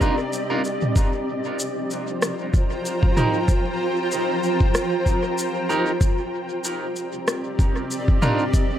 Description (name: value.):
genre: ambient dub.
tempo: 95 BPM.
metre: 4/4.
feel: swing 56% on 16ths.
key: C minor.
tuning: A4 = 444 Hz.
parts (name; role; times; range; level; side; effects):
granular cloud pad; sustained chords; 0.0-8.8 s; C4 to Bb5; -24 LUFS; equal; built-in reverb.
clean electric guitar; stabs; 0.0-8.4 s; D4 to Bb4; -27 LUFS; right 2 dB; phaser, dub echo.
electronic kick drum; drums; 0.0-8.7 s; none; -19 LUFS; equal; studio reverb.
organic electronic drum kit; drums; 0.0-8.7 s; rim click, shaker, toms; -26 LUFS; equal; overdrive, studio reverb, dub echo.
room: light reverb.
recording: echo-heavy mix.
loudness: -20 LUFS.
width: side -11 dB against mid.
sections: 0.0-8.8 A section.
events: none.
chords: 0.0 Cm11.